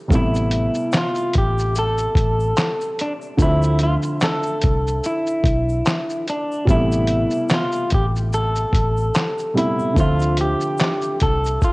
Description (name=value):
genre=lo-fi hip hop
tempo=73 BPM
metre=4/4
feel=swing 58% on 16ths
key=A minor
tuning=A4 = 440 Hz
part: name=warm upright piano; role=accompaniment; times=0.0-11.7 s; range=B2 to E5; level=-24 LUFS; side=right 1 dB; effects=cassette tape, low-pass filter
part: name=vintage muted fingered electric bass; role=bass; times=0.1-11.6 s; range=A1 to D2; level=-21 LUFS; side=equal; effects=none
part: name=lo-fi sampler-style drum kit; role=drums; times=0.1-11.7 s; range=handclaps, hi-hat, kick drum, shaker, snare drum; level=-20 LUFS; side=equal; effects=none
part: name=tube shaker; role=percussion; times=0.1-11.7 s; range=none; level=-47 LUFS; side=left 3 dB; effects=none
part: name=clean electric guitar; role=melody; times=0.2-11.7 s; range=D4 to A4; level=-22 LUFS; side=equal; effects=spring reverb, low-pass filter, cassette tape
room=light reverb, digital ambience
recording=home recording on cassette, nothing above 10.4 kHz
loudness=-17 LUFS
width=side -23 dB against mid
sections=0.1-11.7 A section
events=none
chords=0.1 Am9; 3.4 Dm9; 6.7 Am9; 10.0 Dm9